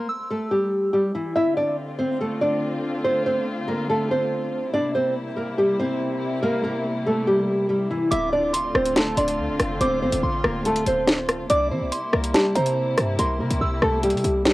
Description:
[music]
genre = hip hop, drill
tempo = 142 BPM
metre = 4/4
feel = half-time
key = D minor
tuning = A4 = 440 Hz
[part]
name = nylon-string guitar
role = melody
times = 0.0-14.5 s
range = E3 to E5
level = -22 LUFS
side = equal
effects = cassette tape, tape echo
[part]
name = soft synth bell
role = second line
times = 0.0-0.9, 8.1-14.4 s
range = A5 to E6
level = -30 LUFS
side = right 1 dB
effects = chorus, cassette tape, tape echo
[part]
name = dark chamber string section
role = sustained chords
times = 1.4-14.5 s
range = C3 to F4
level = -29 LUFS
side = left 1 dB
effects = cassette tape
[part]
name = short 808-style bass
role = bass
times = 8.1-14.5 s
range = D1 to E3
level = -27 LUFS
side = equal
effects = none
[part]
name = drill drum kit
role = drums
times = 8.1-14.5 s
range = hi-hat, rim click, snare drum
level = -22 LUFS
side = equal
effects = none
[sound]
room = light reverb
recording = home recording on cassette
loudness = -20 LUFS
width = side -18 dB against mid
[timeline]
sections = 0.0-1.4 A section; 1.4-14.5 B section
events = break 0.0-1.4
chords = 0.0 C (rootless); 1.4 Dm7; 4.7 C7; 8.1 Dm7; 11.5 C7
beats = 0.09 0.51 0.93 | 1.36 1.78 2.20 2.62 | 3.05 3.47 3.89 4.31 | 4.74 5.16 5.58 6.00 | 6.43 6.85 7.27 7.69 | 8.12 8.54 8.96 9.38 | 9.81 10.23 10.65 11.07 | 11.50 11.92 12.34 12.77 | 13.19 13.61 14.03 14.46

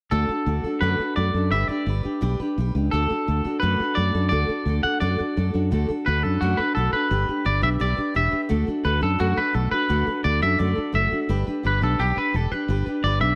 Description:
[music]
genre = rockabilly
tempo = 172 BPM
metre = 4/4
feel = straight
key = D major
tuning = A4 = 441 Hz
[part]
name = twangy electric guitar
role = melody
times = 0.1-13.4 s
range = F#4 to F#5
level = -27 LUFS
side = equal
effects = spring reverb, tape echo
[part]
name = picked steel-string acoustic guitar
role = accompaniment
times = 0.1-13.4 s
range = D3 to B4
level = -29 LUFS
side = equal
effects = none
[part]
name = fretless electric bass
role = bass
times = 0.1-13.4 s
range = E1 to F#2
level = -25 LUFS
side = equal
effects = subtle chorus
[sound]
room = light reverb, small room ambience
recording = none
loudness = -23 LUFS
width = mono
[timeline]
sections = 0.1-5.7 A section; 5.7-13.4 B section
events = none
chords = 0.1 D; 1.5 G; 2.9 D; 7.1 G; 8.5 D; 11.3 G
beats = | 0.12 0.47 0.82 1.17 | 1.52 1.87 2.22 2.57 | 2.92 3.27 3.62 3.97 | 4.32 4.67 5.01 5.36 | 5.71 6.06 6.41 6.76 | 7.11 7.46 7.81 8.16 | 8.51 8.85 9.20 9.55 | 9.90 10.25 10.60 10.95 | 11.30 11.65 11.99 12.34 | 12.69 13.04

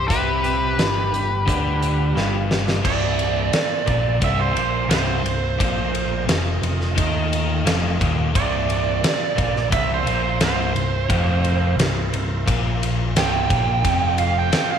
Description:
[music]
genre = blues rock power trio and southern rock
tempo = 87 BPM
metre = 4/4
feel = straight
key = C mixolydian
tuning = A4 = 440 Hz
[part]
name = octave-fuzz lead guitar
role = melody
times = 0.0-2.5 s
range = B4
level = -24 LUFS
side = left 4 dB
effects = distortion
[part]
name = biting lead guitar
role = second line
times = 0.0-14.8 s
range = G4 to G5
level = -24 LUFS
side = right 8 dB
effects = overdrive
[part]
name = overdriven tonewheel organ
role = sustained chords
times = 0.0-14.8 s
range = G3 to Eb5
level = -34 LUFS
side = right 6 dB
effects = slow rotary speaker, chorus vibrato
[part]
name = overdriven electric guitar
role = riff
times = 0.0-14.6 s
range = C2 to Eb3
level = -24 LUFS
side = left 1 dB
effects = spring reverb
[part]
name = overdriven picked electric bass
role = bass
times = 0.0-14.6 s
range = C1 to Eb2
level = -24 LUFS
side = equal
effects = none
[part]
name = huge arena drum kit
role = drums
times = 0.1-14.7 s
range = crash cymbal, hi-hat, kick drum, ride cymbal, snare drum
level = -23 LUFS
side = left 1 dB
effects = none
[sound]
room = moderate echo chamber reverb, RT60 2.4 s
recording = 1960s-style stereo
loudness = -18 LUFS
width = side -8 dB against mid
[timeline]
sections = 0.0-2.9 A section; 2.9-14.8 B section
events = drum fill 2.2-2.9; lead electric guitar solo 2.9-14.8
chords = 0.1 G7; 2.9 C7; 5.6 F7; 8.4 C7; 13.8 F7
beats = | 0.10 0.79 1.48 2.16 | 2.85 3.54 4.23 4.92 | 5.60 6.29 6.98 7.67 | 8.35 9.04 9.72 10.41 | 11.10 11.78 12.47 13.15 | 13.84 14.52

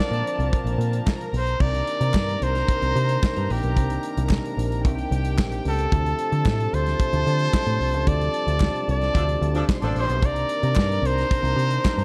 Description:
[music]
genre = disco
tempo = 111 BPM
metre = 4/4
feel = straight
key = C dorian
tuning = A4 = 439 Hz
[part]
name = clear trumpet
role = melody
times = 0.0-12.0 s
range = G4 to D5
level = -28 LUFS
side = equal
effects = slapback echo
[part]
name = rich chamber string section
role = second line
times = 0.0-12.0 s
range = G4 to C6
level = -36 LUFS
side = equal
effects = slapback echo
[part]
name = mellow French horn section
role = sustained chords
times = 0.0-12.0 s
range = C3 to F4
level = -34 LUFS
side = equal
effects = none
[part]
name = warm horn section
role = stabs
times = 0.0-1.3, 9.1-10.2 s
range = F3 to A5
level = -35 LUFS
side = equal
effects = none
[part]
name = modern studio drum kit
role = drums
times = 0.0-12.0 s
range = crash cymbal, hi-hat, kick drum, snare drum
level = -27 LUFS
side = equal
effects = none
[part]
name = picked electric bass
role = bass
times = 0.1-12.0 s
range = A1 to D3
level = -26 LUFS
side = equal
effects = none
[part]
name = group handclap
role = percussion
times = 1.1-12.0 s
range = none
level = -42 LUFS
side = equal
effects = none
[sound]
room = studio reverb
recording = dark, warm production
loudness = -23 LUFS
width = mono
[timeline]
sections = 0.0-1.6 A section; 1.6-12.0 B section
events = band accent 8.1-10.2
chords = 0.0 Bbmaj7; 1.6 Cm9; 5.9 Dm7; 10.2 Cm9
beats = 0.53 1.07 | 1.61 2.15 2.69 3.22 | 3.76 4.30 4.84 5.38 | 5.92 6.45 6.99 7.53 | 8.07 8.61 9.15 9.69 | 10.22 10.76 11.30 11.84

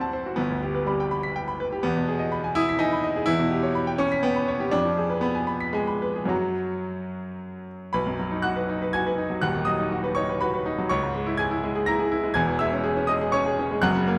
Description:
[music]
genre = classical, virtuoso piano study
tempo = 123 BPM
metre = 3/4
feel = rubato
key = B major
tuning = A4 = 440 Hz
[part]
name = bright grand piano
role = solo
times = 0.0-14.2 s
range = D#1 to B6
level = -25 LUFS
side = equal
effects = none
[sound]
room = moderate recital hall reverb, RT60 1.4 s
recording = dark, warm production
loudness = -25 LUFS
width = mono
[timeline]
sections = 0.0-7.9 A section; 7.9-14.2 B section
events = none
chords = 0.4 G; 1.8 Emaj7; 3.3 C#m7b5/E; 4.7 Fdim7; 6.3 F#; 7.9 B; 9.4 B/D#; 10.9 C#m; 12.4 C#m/E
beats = | 0.38 0.87 1.35 | 1.84 2.32 2.79 | 3.27 3.75 4.24 | 4.73 5.23 5.74 | 6.30 6.86 7.41 | 7.94 8.44 8.95 | 9.44 9.93 10.41 | 10.90 11.39 11.88 | 12.36 12.85 13.34 | 13.84

